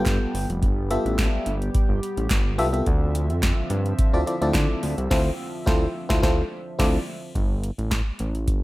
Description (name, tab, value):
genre	early-eighties boogie funk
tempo	107 BPM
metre	4/4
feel	straight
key	unclear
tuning	A4 = 440 Hz
part	FM electric piano	accompaniment	0.0-7.0 s	B3 to G5	-25 LUFS	left 1 dB	chorus
part	chorused pulse-width pad	sustained chords	0.0-7.3 s	D3 to E5	-32 LUFS	right 1 dB	none
part	fat analog bass	bass	0.0-8.6 s	F1 to D3	-25 LUFS	equal	none
part	booming analog drum machine	drums	0.1-8.6 s	crash cymbal, hi-hat, kick drum, snare drum	-23 LUFS	equal	gated reverb
part	group handclap	percussion	0.1-8.1 s	none	-35 LUFS	right 3 dB	none
room	digital ambience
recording	none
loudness	-21 LUFS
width	side -18 dB against mid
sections	0.0-7.4 A section; 7.4-8.6 B section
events	band accent 5.1-7.4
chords	0.0 G13; 2.9 Dm9; 7.4 Gsus2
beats	0.06 | 0.62 1.18 1.75 2.31 | 2.87 3.43 3.99 4.55 | 5.11 5.67 6.23 6.79 | 7.35 7.91 8.47